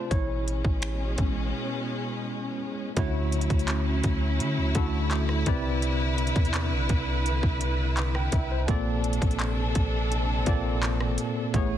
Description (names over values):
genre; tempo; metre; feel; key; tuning
contemporary R&B; 84 BPM; 4/4; straight; D lydian; A4 = 435 Hz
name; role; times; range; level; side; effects
barky tine electric piano; accompaniment; 0.0-11.8 s; A2 to G5; -30 LUFS; equal; medium stereo tremolo
warm symphonic string section; sustained chords; 0.0-11.8 s; B2 to B4; -32 LUFS; equal; none
long sustained 808-style bass; bass; 0.1-11.8 s; A1 to D3; -28 LUFS; equal; none
trap drum kit; drums; 0.1-11.7 s; finger snaps, handclaps, hi-hat, kick drum, rim click; -28 LUFS; equal; vintage 12-bit sampler grit, soft clipping on snare
room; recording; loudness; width
digital ambience; dense, heavily limited modern master; -24 LUFS; side -11 dB against mid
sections
0.0-3.0 A section; 3.0-11.8 B section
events
tine electric piano solo 0.0-3.0; break 1.5-3.0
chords
0.1 Amaj9; 3.0 Dmaj9; 5.5 Cmaj9; 8.7 Bbmaj9